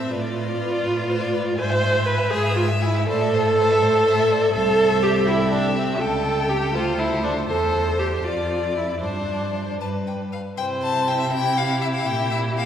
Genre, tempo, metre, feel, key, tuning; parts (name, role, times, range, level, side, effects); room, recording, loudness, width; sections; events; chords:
quick classical-period movement for string quartet; 81 BPM (dotted quarters); 6/8; rubato; A minor, C major from 4.5 s; A4 = 441 Hz
clear violin; melody; 0.0-12.7 s; G4 to A5; -28 LUFS; left 4 dB
rich violin; second line; 0.0-12.7 s; E4 to G#5; -29 LUFS; left 2 dB
rich viola; accompaniment; 0.0-12.7 s; C4 to C5; -22 LUFS; right 1 dB
rich cello; bass; 0.1-12.7 s; C2 to C3; -25 LUFS; right 1 dB
wet church reverb, RT60 3.2 s; recorded in a church or concert hall; -19 LUFS; side -9 dB against mid
0.0-10.6 A section; 10.6-12.7 B section
0.1 Bm7b5/A; 1.6 E/G#; 3.1 Am; 4.5 C; 6.0 A7/C#; 6.7 D5; 7.5 C/E; 8.2 Dm/F; 9.0 Gsus4; 9.8 G; 10.6 C; 12.1 C7/Bb (rootless)